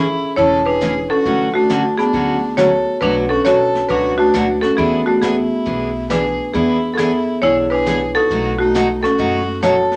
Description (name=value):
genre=country, western swing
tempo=136 BPM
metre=4/4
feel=swing 65% on 8ths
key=unclear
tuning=A4 = 440 Hz
part: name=marimba with hard mallets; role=melody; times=0.0-10.0 s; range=A3 to C#5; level=-18 LUFS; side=equal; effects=none
part: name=clear fiddle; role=second line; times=0.0-10.0 s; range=D4 to A4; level=-26 LUFS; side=equal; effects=none
part: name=picked steel-string acoustic guitar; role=accompaniment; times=0.0-9.8 s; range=B2 to G#4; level=-24 LUFS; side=equal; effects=none
part: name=upright bass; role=bass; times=0.0-9.9 s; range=E1 to E2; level=-33 LUFS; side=equal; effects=none
part: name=jazz brush drum kit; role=drums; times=0.4-10.0 s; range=brushed snare drum, hi-hat, kick drum, snare drum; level=-33 LUFS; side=equal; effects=none
room=moderate club reverb, RT60 0.6 s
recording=none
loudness=-16 LUFS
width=mono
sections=0.0-10.0 A section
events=none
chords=0.0 Amaj7; 1.3 Dmaj7/A; 3.0 Bm7; 4.8 E7; 8.3 B7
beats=0.37 0.81 | 1.25 1.69 2.13 2.58 | 3.02 3.46 3.90 4.34 | 4.78 5.22 5.66 6.10 | 6.54 6.99 7.43 7.87 | 8.31 8.75 9.19 9.63